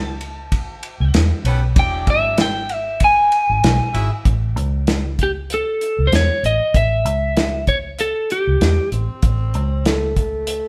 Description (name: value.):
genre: straight-eighth soul blues.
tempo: 96 BPM.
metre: 4/4.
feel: swing 56% on 16ths.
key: unclear.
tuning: A4 = 439 Hz.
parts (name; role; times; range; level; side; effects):
lightly driven lead guitar; melody; 0.0-8.9 s; G4 to A5; -21 LUFS; equal; none.
vintage muted fingered electric bass; bass; 0.0-10.6 s; E1 to E2; -22 LUFS; equal; none.
warm soul drum kit; drums; 0.2-10.6 s; hi-hat, kick drum, ride cymbal, snare drum; -21 LUFS; equal; none.
bright horn section; sustained chords; 1.4-4.1 s; F#3 to E5; -31 LUFS; equal; none.
growling tenor saxophone; second line; 8.9-10.7 s; A3 to C4; -28 LUFS; equal; none.
room: moderate stone room reverb, RT60 1.0 s.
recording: band playing live in one room.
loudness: -18 LUFS.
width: mono.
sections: 0.0-4.3 A section; 4.3-10.7 B section.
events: lead electric guitar solo 0.0-4.3.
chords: 0.0 Aadd9; 1.8 E9; 4.3 A.